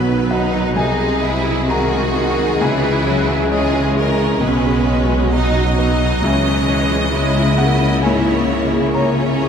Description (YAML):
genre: cinematic, emotional film score for orchestra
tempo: 66 BPM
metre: 4/4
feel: rubato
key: unclear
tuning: A4 = 440 Hz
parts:
  - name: clear studio violin section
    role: melody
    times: 0.0-9.5 s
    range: G#4 to D#5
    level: -25 LUFS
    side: right 1 dB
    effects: none
  - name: rich studio violin section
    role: second line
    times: 0.0-9.5 s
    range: B3 to F#4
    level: -22 LUFS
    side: right 2 dB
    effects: none
  - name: felt-muted upright piano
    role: accompaniment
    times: 0.0-9.5 s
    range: B1 to A#5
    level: -22 LUFS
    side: left 2 dB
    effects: none
  - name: rich studio viola section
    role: accompaniment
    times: 0.0-9.5 s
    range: B#2 to A#3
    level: -23 LUFS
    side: left 3 dB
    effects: none
  - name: mellow French horn section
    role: sustained chords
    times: 0.0-9.5 s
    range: B#2 to G#4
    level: -25 LUFS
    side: right 1 dB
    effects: stereo widening
  - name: concert harp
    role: arpeggios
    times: 0.0-9.5 s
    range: B2 to D#5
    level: -24 LUFS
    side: left 1 dB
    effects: none
  - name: rich studio double bass section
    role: bass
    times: 0.0-9.5 s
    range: B1 to C#2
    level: -21 LUFS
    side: right 1 dB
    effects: none
  - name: warm studio cello section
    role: bass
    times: 0.0-9.5 s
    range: B2 to C#3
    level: -22 LUFS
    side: equal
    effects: none
room: wet cathedral reverb, RT60 4.9 s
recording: in a vast, echoing space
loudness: -14 LUFS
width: side -7 dB against mid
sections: 0.0-9.5 A section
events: none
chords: 0.0 B; 0.8 G#/B#; 2.6 C#m; 4.4 B; 6.2 C#m